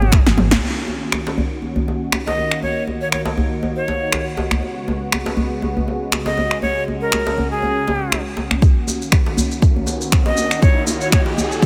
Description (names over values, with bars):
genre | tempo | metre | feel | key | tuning
afro house | 120 BPM | 4/4 | swing 55% on 16ths | Eb minor | A4 = 439 Hz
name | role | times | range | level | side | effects
breathy bright jazz flute | melody | 0.0-11.2 s | Ab4 to Eb5 | -26 LUFS | equal | dub echo
warm analog pad | sustained chords | 0.0-11.7 s | Db3 to Gb4 | -28 LUFS | equal | chorus, sidechain pumping
smooth synth bass | bass | 0.0-0.6 s | Ab1 | -20 LUFS | equal | sidechain pumping
congas | percussion | 0.0-0.5 s | none | -28 LUFS | equal | none
deep house drum kit | drums | 0.1-11.2 s | finger snaps, snare drum, toms | -24 LUFS | equal | overdrive, high-pass filter on snare, high-pass filter on toms
electronic kick drum | drums | 0.1-0.2, 8.6-11.7 s | none | -16 LUFS | equal | overdrive
djembe | percussion | 0.1-11.7 s | none | -26 LUFS | equal | none
maracas | percussion | 8.6-11.7 s | none | -29 LUFS | equal | none
riser | sound effects | 9.6-11.7 s | none | -29 LUFS | equal | none
room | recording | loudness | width
light reverb, small room ambience | none | -19 LUFS | mono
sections
0.6-8.6 A section; 8.6-11.7 B section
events
drum fill 0.2-0.6; band accent 0.5; build-up 8.6-11.7; riser 9.6-11.7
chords
0.0 Dbsus4; 0.6 Ebm7; 4.6 Db7sus4; 8.6 Ebm7